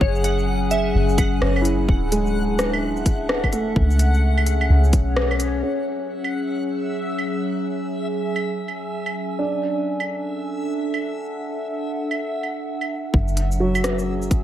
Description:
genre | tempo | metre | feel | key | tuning
future garage | 128 BPM | 4/4 | swing 62% on 16ths | F# minor | A4 = 440 Hz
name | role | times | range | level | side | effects
glassy wavetable pluck | melody | 0.0-1.6 s | C#5 to F#5 | -28 LUFS | right 2 dB | chorus, tape echo
warm upright piano | accompaniment | 0.0-14.4 s | F#3 to G#4 | -27 LUFS | right 1 dB | sidechain pumping, low-pass filter, tape echo
warbly tape-like pad | sustained chords | 0.0-14.4 s | F#3 to G#5 | -25 LUFS | equal | chorus, built-in reverb, sidechain pumping
soft 808-style bass | bass | 0.0-5.6, 13.1-14.4 s | D1 to C#2 | -20 LUFS | equal | tube saturation, sidechain pumping
electronic kick drum | drums | 0.0-5.0, 13.1-14.4 s | none | -19 LUFS | equal | none
backwards swelling texture | texture | 0.0-13.1 s | E5 to F#5 | -35 LUFS | left 2 dB | built-in reverb
organic electronic drum kit | drums | 0.2-14.4 s | claves, hi-hat, rim click, shaker | -26 LUFS | right 1 dB | overdrive
room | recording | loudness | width
moderate lush hall reverb, RT60 2.3 s | none | -19 LUFS | side -12 dB against mid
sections
0.0-5.6 A section; 5.6-13.1 B section; 13.1-14.4 A section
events
band accent 5.2; filter sweep on upright piano 5.6-13.1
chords
0.0 F#sus2; 1.9 Dadd9; 3.8 C#7sus4; 5.6 F#sus2; 9.4 Dadd9; 13.1 F#sus2

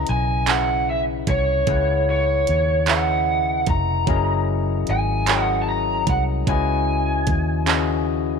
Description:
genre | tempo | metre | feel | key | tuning
slow six-eight R&B | 50 BPM (dotted quarters) | 6/8 | straight | C# dorian | A4 = 440 Hz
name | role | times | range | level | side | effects
lead guitar through a small cranked amp | melody | 0.0-8.0 s | C#5 to A#5 | -22 LUFS | right 2 dB | overdrive
overdriven tine electric piano | accompaniment | 0.0-8.4 s | C#3 to F#5 | -25 LUFS | left 12 dB | none
vintage muted fingered electric bass | bass | 0.0-8.4 s | E#1 to D#2 | -23 LUFS | right 1 dB | none
smooth R&B drum kit | drums | 0.1-7.9 s | handclaps, hi-hat, kick drum | -23 LUFS | right 5 dB | none
room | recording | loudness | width
light reverb, digital ambience | 1960s-style stereo | -18 LUFS | side -5 dB against mid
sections
0.0-8.4 A section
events
none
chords
0.0 C#m7; 4.1 F#13; 6.5 C#m11

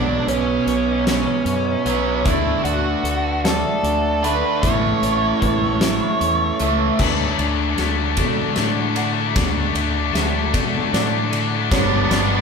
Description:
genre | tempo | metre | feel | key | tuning
post-rock | 51 BPM (dotted quarters) | 6/8 | straight | D major | A4 = 439 Hz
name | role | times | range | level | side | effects
octave-fuzz lead guitar | melody | 0.0-6.6 s | C#4 to C#5 | -24 LUFS | equal | distortion
deep dark ambient pad | sustained chords | 0.1-12.4 s | G4 to D6 | -32 LUFS | left 1 dB | chorus, built-in reverb
twelve-string electric guitar | arpeggios | 0.0-12.4 s | A2 to C#5 | -27 LUFS | left 4 dB | slapback echo
raw garage guitar | riff | 0.0-7.0, 11.7-12.4 s | A2 to D4 | -21 LUFS | right 4 dB | overdrive
modern bright fingered electric bass | bass | 0.0-12.4 s | G1 to B2 | -25 LUFS | equal | none
felt-muted upright piano | arpeggios | 0.3-12.4 s | D4 to F#5 | -32 LUFS | right 6 dB | none
huge arena drum kit | drums | 0.3-12.3 s | crash cymbal, hi-hat, kick drum, ride cymbal, snare drum | -23 LUFS | left 1 dB | none
distorted electric guitar | riff | 7.0-12.4 s | A3 to D4 | -22 LUFS | left 8 dB | overdrive
room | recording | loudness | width
wet large studio reverb, RT60 1.1 s | band playing live in one room | -17 LUFS | side -5 dB against mid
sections
0.0-7.0 A section; 7.0-12.4 B section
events
build-up 7.0-12.4; drum fill 7.0-12.4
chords
0.0 Bmadd9; 2.3 D; 4.6 A; 7.0 D; 11.7 G

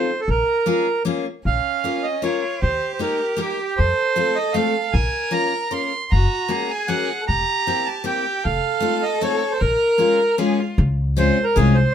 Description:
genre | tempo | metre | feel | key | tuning
musette waltz | 154 BPM | 3/4 | straight | Bb minor | A4 = 439 Hz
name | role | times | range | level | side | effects
accordion | melody | 0.0-11.9 s | G4 to C6 | -21 LUFS | right 2 dB | none
picked steel-string acoustic guitar | accompaniment | 0.0-11.8 s | Ab3 to Bb4 | -23 LUFS | left 5 dB | none
upright bass | bass | 0.3-11.8 s | E1 to F2 | -19 LUFS | equal | none
clear violin | second line | 1.4-10.8 s | Db4 to Bb4 | -27 LUFS | right 2 dB | none
room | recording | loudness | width
light reverb | minimal, uncompressed stereo recording | -18 LUFS | side -9 dB against mid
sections
0.0-1.5 A section; 1.5-10.8 A section; 10.8-11.9 B section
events
none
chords
0.3 Bbm7; 1.5 Bbm; 2.6 Eb; 3.8 F; 4.9 Bbm; 6.1 Gb; 7.3 C7/E; 8.4 F7; 9.6 Bbm7; 10.8 Dbmaj7

